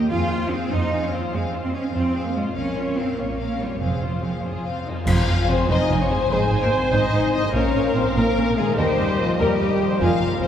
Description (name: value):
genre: cinematic, heroic adventure film score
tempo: 97 BPM (dotted quarters)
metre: 12/8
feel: straight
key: F minor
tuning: A4 = 438 Hz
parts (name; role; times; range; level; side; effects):
- warm symphonic violin section; melody; 0.0-10.5 s; F4 to F5; -28 LUFS; left 4 dB; none
- warm symphonic violin section; second line; 0.0-10.5 s; C4 to Ab5; -28 LUFS; left 2 dB; none
- warm studio viola section; accompaniment; 0.0-10.5 s; C4 to C5; -28 LUFS; right 2 dB; none
- concert harp; arpeggios; 0.0-10.5 s; F2 to Bb4; -31 LUFS; left 3 dB; none
- rich symphonic cello section; bass; 0.0-10.5 s; Eb2 to F4; -26 LUFS; right 2 dB; none
- warm symphonic double bass section; bass; 0.1-10.5 s; F1 to F2; -26 LUFS; right 2 dB; none
- cymbal swell, clash cymbals and concert bass drum; percussion; 2.6-5.9 s; none; -27 LUFS; equal; none
- mellow French horn section; sustained chords; 5.1-10.5 s; F3 to F4; -23 LUFS; left 2 dB; none
room: wet cathedral reverb, RT60 4.8 s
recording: recorded in a church or concert hall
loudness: -19 LUFS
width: side -9 dB against mid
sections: 0.0-5.1 A section; 5.1-10.5 A section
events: band accent 5.1-5.5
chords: 0.1 Fm; 2.6 Bbm; 3.8 Fm; 6.3 Ab; 7.5 Bbm; 8.8 Eb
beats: | 0.11 0.73 1.34 1.95 | 2.57 3.19 3.81 4.44 | 5.07 5.69 6.31 6.92 | 7.54 8.16 8.78 9.39 | 10.01